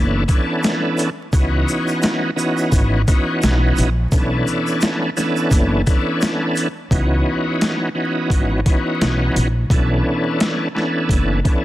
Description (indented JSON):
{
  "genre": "hip hop, boom-bap hip-hop",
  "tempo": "86 BPM",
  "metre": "4/4",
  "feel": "swing 56% on 16ths",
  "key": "C# phrygian",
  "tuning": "A4 = 440 Hz",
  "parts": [
    { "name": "bright tonewheel organ", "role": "accompaniment", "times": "0.0-11.6 s", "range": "E3 to A4", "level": "-19 LUFS", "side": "equal", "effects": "chorus vibrato, slow rotary speaker, cassette tape, high-pass filter, low-pass filter" },
    { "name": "upright bass", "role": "bass", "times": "0.0-11.4 s", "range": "F#1 to C#2", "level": "-19 LUFS", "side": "equal", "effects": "none" },
    { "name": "boom bap sampler-style drum kit", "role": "drums", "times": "0.3-11.6 s", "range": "hi-hat, kick drum, shaker, snare drum", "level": "-18 LUFS", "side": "equal", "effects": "overdrive" },
    { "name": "tube shaker", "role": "percussion", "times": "0.3-6.7 s", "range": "none", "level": "-37 LUFS", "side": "right 5 dB", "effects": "none" }
  ],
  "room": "light reverb",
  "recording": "dense, heavily limited modern master, vinyl crackle",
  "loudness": "-16 LUFS",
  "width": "side -15 dB against mid",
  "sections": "0.0-6.9 A section; 6.9-11.6 B section",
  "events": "none",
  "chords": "0.0 Bm11; 1.3 C#m11; 4.1 Bm11; 6.9 C#m11; 9.7 Bm11"
}